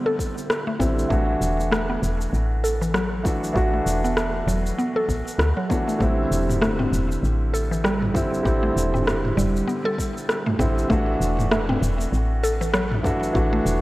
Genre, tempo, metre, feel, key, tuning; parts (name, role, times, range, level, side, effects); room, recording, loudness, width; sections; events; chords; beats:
organic downtempo; 98 BPM; 4/4; swing 58% on 16ths; A dorian; A4 = 440 Hz
felt-muted upright piano; accompaniment; 0.0-13.8 s; D3 to F#4; -26 LUFS; equal; sidechain pumping, low-pass filter, digital delay
mallet-like synth pluck; arpeggios; 0.0-13.8 s; E3 to A4; -26 LUFS; equal; chorus, phaser, digital delay
deep house drum kit; drums; 0.2-13.8 s; rim click, shaker, toms; -26 LUFS; equal; overdrive
electronic kick drum; drums; 0.2-13.5 s; -26 LUFS; equal; overdrive
woody FM bass; bass; 0.8-13.8 s; E1 to D2; -24 LUFS; equal; sidechain pumping
moderate lush hall reverb, RT60 2.8 s; worn, warbling old tape, cassette tape, warbly pitch drift; -20 LUFS; side -18 dB against mid
0.0-13.8 A section
filter sweep on synth pluck 0.0-13.8
0.0 Am; 1.1 Bm7; 6.0 Am; 10.9 D
0.50 | 1.11 1.72 2.33 2.95 | 3.56 4.17 4.78 5.39 | 6.01 6.62 7.23 7.84 | 8.46 9.07 9.68 10.29 | 10.90 11.52 12.13 12.74 | 13.35